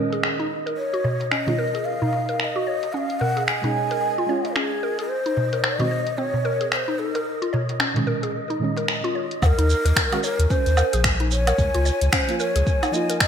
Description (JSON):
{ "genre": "organic downtempo", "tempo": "111 BPM", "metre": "4/4", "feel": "swing 59% on 16ths", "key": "unclear", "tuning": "A4 = 439 Hz", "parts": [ { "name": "deep mellow chord stab", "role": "accompaniment", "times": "0.0-13.3 s", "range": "Bb2 to Ab4", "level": "-28 LUFS", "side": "right 3 dB", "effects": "chorus, vintage 12-bit sampler grit, sidechain pumping, ping-pong delay" }, { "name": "mallet-like synth pluck", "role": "arpeggios", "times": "0.0-13.3 s", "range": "C4 to Db5", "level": "-28 LUFS", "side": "left 1 dB", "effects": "chorus, ping-pong delay" }, { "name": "wind-like tuned noise texture", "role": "texture", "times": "0.0-13.3 s", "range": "Eb5 to Ab5", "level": "-34 LUFS", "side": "right 1 dB", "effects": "built-in reverb" }, { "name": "deep house drum kit", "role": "drums", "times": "0.1-13.3 s", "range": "finger snaps, hi-hat, shaker, woodblock", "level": "-25 LUFS", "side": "equal", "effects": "low-pass filter on hats, low-pass filter on snare, low-pass filter on perc, low-pass filter on room, gated reverb" }, { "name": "breathy mellow ney", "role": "melody", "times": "0.8-13.3 s", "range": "Ab4 to Ab5", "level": "-25 LUFS", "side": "left 1 dB", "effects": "ping-pong delay" }, { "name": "darbuka", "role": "percussion", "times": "1.0-8.9 s", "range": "none", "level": "-27 LUFS", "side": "equal", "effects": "none" }, { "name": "warm sub bass", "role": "bass", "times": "9.4-12.6 s", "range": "Bb1 to Eb2", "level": "-20 LUFS", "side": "equal", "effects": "none" }, { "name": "electronic kick drum", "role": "drums", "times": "9.4-13.3 s", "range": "none", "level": "-24 LUFS", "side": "equal", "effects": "none" } ], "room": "moderate lush hall reverb, RT60 1.8 s, digital ambience", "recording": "bright 1980s-style digital production", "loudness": "-20 LUFS", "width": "side -8 dB against mid", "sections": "0.0-9.4 A section; 9.4-13.3 B section", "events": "none", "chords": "0.0 Bbm7; 0.8 Eb7(no3); 2.9 Dbadd9; 5.1 Ab (rootless); 7.3 Bbm7; 9.4 Eb7(no3); 11.6 Dbadd9", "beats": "0.23 | 0.78 1.31 1.86 2.40 | 2.94 3.48 4.02 4.56 | 5.10 5.64 6.18 6.72 | 7.26 7.80 8.34 8.88 | 9.42 9.96 10.50 11.04 | 11.59 12.13 12.67 13.21" }